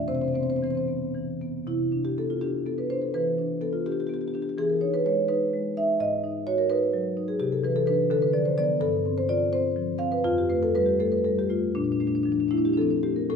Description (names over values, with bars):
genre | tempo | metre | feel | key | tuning
classical, contemporary piece for solo marimba | 73-88 BPM (dotted quarters) | 6/8 | rubato | C major | A4 = 440 Hz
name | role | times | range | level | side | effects
marimba with soft mallets | solo | 0.0-13.4 s | F2 to F5 | -23 LUFS | equal | none
room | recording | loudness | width
moderate recital hall reverb, RT60 1.5 s | none | -23 LUFS | side -6 dB against mid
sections
0.0-1.7 A section; 1.7-13.3 A section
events
none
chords
0.1 Cmaj7; 1.7 Csus2; 3.1 Em7; 4.6 Emaj7; 6.0 Abm7; 7.4 Cadd9; 8.1 Dm6; 8.8 G7sus4; 10.2 Fadd9; 11.7 Bbmaj7